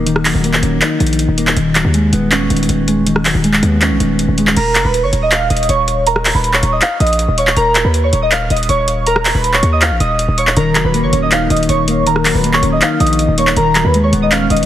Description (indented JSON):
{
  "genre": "hip hop, trap",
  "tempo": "160 BPM",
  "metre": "4/4",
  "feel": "half-time",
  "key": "Eb minor",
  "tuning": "A4 = 440 Hz",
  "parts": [
    { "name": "mellow electric guitar", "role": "accompaniment", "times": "0.0-4.6, 10.6-14.7 s", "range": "Eb3 to Eb4", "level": "-15 LUFS", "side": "left 2 dB", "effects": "none" },
    { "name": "hard-hitting 808-style bass", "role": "bass", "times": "0.0-14.7 s", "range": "Eb1 to Eb2", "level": "-17 LUFS", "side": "equal", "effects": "none" },
    { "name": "booming analog drum machine", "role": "drums", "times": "0.1-14.7 s", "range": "crash cymbal, handclaps, hi-hat, rim click", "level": "-16 LUFS", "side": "equal", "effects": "none" },
    { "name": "warbly lo-fi synth keys", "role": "melody", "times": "4.6-14.7 s", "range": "Bb4 to F6", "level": "-15 LUFS", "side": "right 2 dB", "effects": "chorus, phaser" }
  ],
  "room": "light reverb",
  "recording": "heavily compressed radio sound, multiband compression",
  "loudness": "-11 LUFS",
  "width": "side -12 dB against mid",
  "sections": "0.0-4.6 A section; 4.6-14.7 B section",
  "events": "none",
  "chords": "0.0 Ebm7; 1.6 Db7sus4/Eb; 4.6 Eb7(no3); 7.6 Bmaj9#11/D#; 10.6 Ebm7; 13.6 Db7sus4/Eb"
}